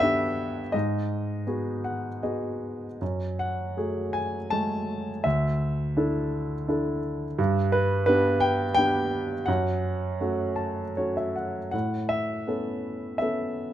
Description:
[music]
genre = classical, lyrical solo piano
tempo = 76-87 BPM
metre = 3/4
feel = rubato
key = unclear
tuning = A4 = 437 Hz
[part]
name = warm grand piano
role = solo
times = 0.0-13.7 s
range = D2 to A5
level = -24 LUFS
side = equal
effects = none
[sound]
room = light reverb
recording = close, detailed microphones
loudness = -25 LUFS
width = side -11 dB against mid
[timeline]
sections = 0.0-11.7 A section; 11.7-13.7 B section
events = grand piano fill 1.5-3.0, 10.6-11.7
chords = 0.0 G; 0.7 G#m7; 3.0 F#madd9; 5.3 Dsus2; 7.4 G; 9.5 F#m; 11.7 Aadd9

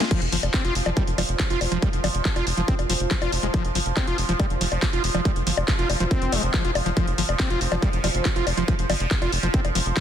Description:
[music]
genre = psychedelic trance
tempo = 140 BPM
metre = 4/4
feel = straight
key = unclear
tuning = A4 = 440 Hz
[part]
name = screaming distorted acid line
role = riff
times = 0.0-10.0 s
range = F3 to F4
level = -27 LUFS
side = moving between left 9 dB and right 6 dB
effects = distortion, chorus, auto-pan, sidechain pumping, ping-pong delay
[part]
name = techno drum kit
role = drums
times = 0.0-10.0 s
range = bongos, crash cymbal, handclaps, hi-hat, snare drum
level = -27 LUFS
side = left 3 dB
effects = none
[part]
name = bubbling stepped-filter texture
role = sustained chords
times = 0.3-10.0 s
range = F3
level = -31 LUFS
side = right 3 dB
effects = chorus, built-in reverb, sidechain pumping
[part]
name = electronic kick drum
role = drums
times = 0.1-10.0 s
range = none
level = -24 LUFS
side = equal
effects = distortion
[part]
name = tight sequencer bass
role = bass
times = 0.2-9.9 s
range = F1 to G1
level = -26 LUFS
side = equal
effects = none
[sound]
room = light reverb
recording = dense, heavily limited modern master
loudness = -20 LUFS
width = side -9 dB against mid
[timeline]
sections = 0.0-10.0 A section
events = none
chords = 0.0 F5

